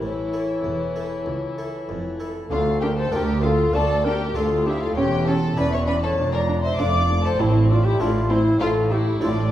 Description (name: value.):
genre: classical, baroque-style concerto movement with solo episodes.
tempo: 98 BPM.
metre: 4/4.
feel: straight.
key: D minor.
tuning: A4 = 438 Hz.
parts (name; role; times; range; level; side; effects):
dark studio violin section; melody; 0.0-9.5 s; A4 to D6; -31 LUFS; left 3 dB; none.
mellow baroque flute; melody; 0.0-9.3 s; E4 to F5; -24 LUFS; left 2 dB; none.
rich chamber violin section; second line; 0.0-9.5 s; C4 to D5; -29 LUFS; left 2 dB; none.
dark chamber viola section; accompaniment; 0.0-9.3 s; E3 to E4; -30 LUFS; right 1 dB; none.
harpsichord; accompaniment; 0.0-9.5 s; C#2 to A4; -34 LUFS; equal; none.
rich chamber cello section; bass; 0.0-9.5 s; C#2 to A2; -26 LUFS; right 2 dB; none.
warm studio double bass section; bass; 0.0-9.5 s; E1 to D2; -25 LUFS; right 2 dB; none.
room: wet recital hall reverb, RT60 1.4 s.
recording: heard from further back in the room.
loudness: -19 LUFS.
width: side -12 dB against mid.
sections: 0.0-2.5 A section; 2.5-9.5 B section.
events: none.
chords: 0.0 A; 2.5 Dm; 5.0 C#dim/E; 6.2 Dm/F; 7.4 Am.